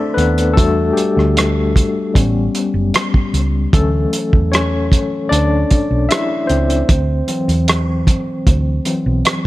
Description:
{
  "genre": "lush 1970s-style soul",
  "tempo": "76 BPM",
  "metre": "4/4",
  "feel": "straight",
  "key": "D major",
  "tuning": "A4 = 440 Hz",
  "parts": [
    { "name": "barky tine electric piano", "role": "accompaniment", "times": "0.0-9.5 s", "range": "E3 to E5", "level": "-17 LUFS", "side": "left 2 dB", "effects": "medium tremolo" },
    { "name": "hollow-body short-scale fingered electric bass", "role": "bass", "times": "0.2-9.2 s", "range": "F#1 to E2", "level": "-17 LUFS", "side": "equal", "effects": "none" },
    { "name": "cloth-damped thuddy drum kit", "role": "drums", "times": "0.2-9.4 s", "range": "hi-hat, kick drum, rim click", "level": "-16 LUFS", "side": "right 1 dB", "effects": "none" }
  ],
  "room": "light reverb, small room reverb",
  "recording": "none",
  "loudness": "-13 LUFS",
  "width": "side -17 dB against mid",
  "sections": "0.0-9.5 A section",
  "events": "tine electric piano solo 0.0-9.5",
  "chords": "0.0 C6; 0.6 Em7; 2.2 A7; 3.7 Dmaj9; 6.9 D7"
}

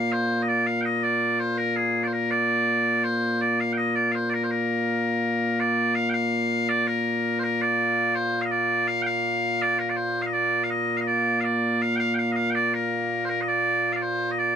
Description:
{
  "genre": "scottish traditional, Scottish pipe music",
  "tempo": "82 BPM",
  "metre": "2/4",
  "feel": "straight",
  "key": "Bb major",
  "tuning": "A4 = 442 Hz",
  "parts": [
    { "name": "loud bright bagpipes", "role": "solo", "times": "0.0-14.6 s", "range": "Bb2 to G5", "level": "-22 LUFS", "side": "equal", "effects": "none" }
  ],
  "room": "moderate booth ambience, RT60 0.2 s",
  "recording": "none",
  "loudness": "-22 LUFS",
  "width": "side -8 dB against mid",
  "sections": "0.0-6.0 A section; 6.0-14.6 B section",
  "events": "none",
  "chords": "none"
}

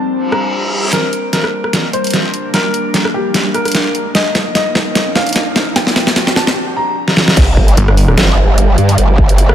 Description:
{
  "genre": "heavy wobble dubstep",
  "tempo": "149 BPM",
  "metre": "4/4",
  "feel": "swing 55% on 16ths, half-time",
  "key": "G minor",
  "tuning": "A4 = 440 Hz",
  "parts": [
    { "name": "warm baby grand piano", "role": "melody", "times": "0.0-7.3 s", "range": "G4 to Bb5", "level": "-19 LUFS", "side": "left 1 dB", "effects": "low-pass filter, digital delay" },
    { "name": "evolving wavetable pad", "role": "sustained chords", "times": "0.0-9.5 s", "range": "D3 to D5", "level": "-21 LUFS", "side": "equal", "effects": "chorus, built-in reverb, sidechain pumping" },
    { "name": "reverse cymbal, riser and sub drop", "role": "sound effects", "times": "0.2-9.0 s", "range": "none", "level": "-21 LUFS", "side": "equal", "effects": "none" },
    { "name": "dubstep drum kit", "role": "drums", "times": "0.3-9.5 s", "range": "crash cymbal, hi-hat, rim click, snare drum", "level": "-14 LUFS", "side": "equal", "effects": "overdrive" },
    { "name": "growl bass", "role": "bass", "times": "7.4-9.5 s", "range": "G1 to G2", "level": "-10 LUFS", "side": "equal", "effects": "chorus, overdrive" },
    { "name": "electronic kick drum", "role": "drums", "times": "7.4-9.3 s", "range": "none", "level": "-12 LUFS", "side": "equal", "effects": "overdrive" },
    { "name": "snarling distorted saw bass", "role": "bass", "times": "7.8-8.2 s", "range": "G1", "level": "-9 LUFS", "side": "equal", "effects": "distortion, overdrive" }
  ],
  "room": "light reverb",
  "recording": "none",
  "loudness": "-11 LUFS",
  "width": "side -10 dB against mid",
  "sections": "0.9-7.4 A section; 7.4-9.5 B section",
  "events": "reverse cymbal 0.2-0.9; build-up 0.9-7.4; drum fill 0.9-6.6, 7.1-7.4; riser 0.9-6.6; drop 7.4-9.5; impact 7.4-9.0",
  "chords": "0.0 Csus2; 0.9 Gm; 4.1 Ebsus2; 5.8 Csus2; 7.4 G5"
}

